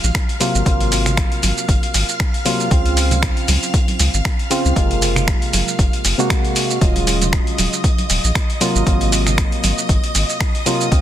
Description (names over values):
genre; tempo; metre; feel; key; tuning
deep house; 117 BPM; 4/4; swing 56% on 16ths; unclear; A4 = 439 Hz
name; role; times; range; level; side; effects
percussive organ stab; stabs; 0.0-11.0 s; C3 to Gb4; -21 LUFS; equal; chorus, cassette tape, sidechain pumping, digital delay
round analog bass; bass; 0.0-11.0 s; Eb1 to Db2; -19 LUFS; equal; sidechain pumping
dusty soul sampler-style drum kit; drums; 0.0-11.0 s; finger snaps, hi-hat, shaker; -20 LUFS; right 1 dB; overdrive, soft clipping on snare
string machine, violins; texture; 0.0-11.0 s; Eb5 to F6; -27 LUFS; equal; ensemble chorus, sidechain pumping
electronic kick drum; drums; 0.1-11.0 s; none; -18 LUFS; equal; none
congas; percussion; 1.1-9.8 s; none; -27 LUFS; right 4 dB; none
room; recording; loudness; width
little or no reverb; dense, heavily limited modern master; -14 LUFS; side -11 dB against mid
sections
0.0-11.0 A section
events
none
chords
0.4 Ab13; 2.7 Dbmaj7; 4.8 Gbmaj9#11; 6.8 Ebm11; 8.6 Ab13